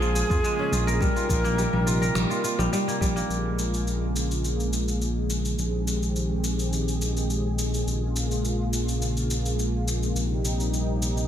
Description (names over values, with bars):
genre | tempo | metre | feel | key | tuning
organic downtempo | 105 BPM | 4/4 | straight | Bb dorian | A4 = 442 Hz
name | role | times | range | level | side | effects
mellow Native American-style cedar flute | melody | 0.0-2.7 s | Ab4 to Bb4 | -30 LUFS | equal | digital delay
warm analog pad | sustained chords | 0.0-11.3 s | C3 to Ab4 | -30 LUFS | equal | chorus, sidechain pumping
kora | arpeggios | 0.0-5.1 s | F3 to Bb4 | -29 LUFS | right 1 dB | tape echo
smooth gliding synth bass | bass | 0.0-11.3 s | Bb1 to F2 | -26 LUFS | equal | sidechain pumping
electronic shaker and finger snaps | drums | 0.0-11.3 s | none | -32 LUFS | left 2 dB | soft clipping on snare
electronic kick drum | drums | 0.3-3.1 s | none | -27 LUFS | equal | none
room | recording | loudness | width
light reverb | dense, heavily limited modern master | -23 LUFS | side -10 dB against mid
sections
0.0-3.3 A section; 3.3-11.3 B section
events
none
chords
0.0 Bbm7; 1.0 Cm7/Bb; 3.3 Bbm7; 5.6 Abmaj7/Bb; 7.9 Bbm7; 10.2 Cm7/Bb